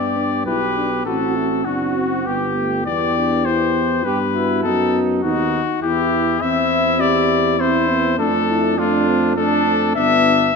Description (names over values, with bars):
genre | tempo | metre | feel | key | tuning
classical, brass quintet | 101 BPM | 3/4 | straight | C major from 6.4 s | A4 = 441 Hz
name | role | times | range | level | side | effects
clear trumpet | melody | 0.0-10.6 s | F4 to E5 | -20 LUFS | left 8 dB | none
warm trumpet | second line | 0.0-10.5 s | D4 to G4 | -24 LUFS | right 7 dB | none
dark French horn | accompaniment | 0.0-10.6 s | A3 to G4 | -24 LUFS | left 3 dB | none
dark euphonium | accompaniment | 0.0-10.5 s | A3 to C4 | -23 LUFS | equal | none
warm bass trombone | bass | 0.0-10.5 s | F#1 to G2 | -24 LUFS | right 4 dB | none
room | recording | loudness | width
moderate recital hall reverb, RT60 1.4 s | none | -16 LUFS | side -4 dB against mid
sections
0.0-10.6 A section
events
none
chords
0.0 G; 1.1 F#m7b5; 2.3 G; 2.9 Em; 4.7 B/F#; 5.8 Em; 6.4 C/E; 8.2 Dm/F; 10.0 G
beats
0.46 | 1.06 1.66 2.25 | 2.85 3.45 4.05 | 4.65 5.24 5.83 | 6.42 7.01 7.60 | 8.19 8.78 9.37 | 9.96